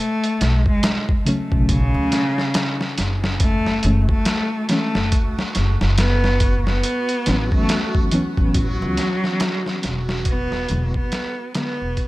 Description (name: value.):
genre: trip hop.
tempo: 70 BPM.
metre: 4/4.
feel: swing 60% on 16ths.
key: F# minor.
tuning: A4 = 439 Hz.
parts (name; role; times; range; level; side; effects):
rich cello; melody; 0.0-12.1 s; C#3 to B3; -23 LUFS; equal; vintage 12-bit sampler grit, dub echo.
trip hop sampler-style drum kit; drums; 0.2-12.1 s; hi-hat, kick drum, snare drum; -22 LUFS; equal; none.
upright bass; bass; 0.4-12.0 s; E1 to D2; -21 LUFS; equal; none.
reed electric piano; accompaniment; 1.3-11.8 s; C#3 to C#4; -24 LUFS; equal; tremolo, vintage 12-bit sampler grit.
backwards swelling texture; texture; 4.1-12.1 s; F#4; -34 LUFS; right 2 dB; built-in reverb.
room: little or no reverb.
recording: none.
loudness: -17 LUFS.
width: side -18 dB against mid.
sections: 0.0-12.1 A section.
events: fade-out 8.0-12.1.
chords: 0.0 B7sus2; 3.4 F#m7; 6.8 A69; 10.3 E7.